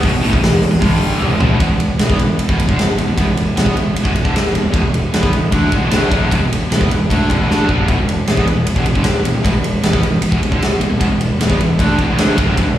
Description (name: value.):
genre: hard rock.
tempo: 153 BPM.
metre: 4/4.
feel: straight.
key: E minor.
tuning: A4 = 440 Hz.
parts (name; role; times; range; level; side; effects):
overdriven electric guitar; riff; 0.0-12.8 s; E2 to D4; -18 LUFS; equal; slapback echo.
fuzz fingered electric bass; bass; 0.0-12.8 s; E1 to E2; -17 LUFS; equal; overdrive.
big rock drum kit; drums; 0.0-12.7 s; hi-hat, kick drum, ride cymbal, snare drum, toms; -16 LUFS; equal; none.
room: light reverb, studio ambience.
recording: live gig heard through the venue's PA, recital hall reverb, small room ambience.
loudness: -13 LUFS.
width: side -12 dB against mid.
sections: 0.0-1.6 A section; 1.6-12.8 B section.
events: drum fill 1.2-1.6, 7.5-7.9.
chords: 0.0 E5; 0.8 G5; 1.2 E5; 1.6 Em.